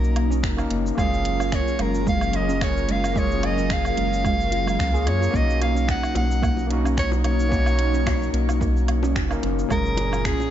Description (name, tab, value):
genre	sunset chillout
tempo	110 BPM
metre	4/4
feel	swing 54% on 16ths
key	B lydian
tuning	A4 = 440 Hz
part	breathy soprano saxophone	melody	0.0-10.5 s	G#4 to F#5	-27 LUFS	right 1 dB	tape echo
part	overdriven tine electric piano	accompaniment	0.0-10.5 s	A#2 to A#4	-28 LUFS	moving between left 6 dB and right 3 dB	auto-pan, digital delay
part	airy breathy pad	sustained chords	0.0-10.5 s	F#3 to A#5	-30 LUFS	left 1 dB	chorus, phaser
part	warm sub bass	bass	0.0-10.3 s	F#1 to F#2	-24 LUFS	equal	none
part	smooth R&B drum kit	drums	0.0-10.5 s	finger snaps, hi-hat, shaker, woodblock	-32 LUFS	right 2 dB	small room reverb
part	soft round pluck	arpeggios	0.3-10.2 s	G#3 to G#4	-30 LUFS	right 3 dB	analog chorus, digital delay
part	electronic kick drum	drums	0.4-10.4 s	none	-27 LUFS	equal	overdrive, small room reverb
part	bongos	percussion	5.6-10.5 s	none	-36 LUFS	left 5 dB	none
room	light reverb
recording	nothing above 7.7 kHz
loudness	-20 LUFS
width	side -11 dB against mid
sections	0.0-10.5 A section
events	none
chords	0.0 Bmaj9; 1.0 F#maj9; 5.3 Bmaj9; 9.7 F#maj9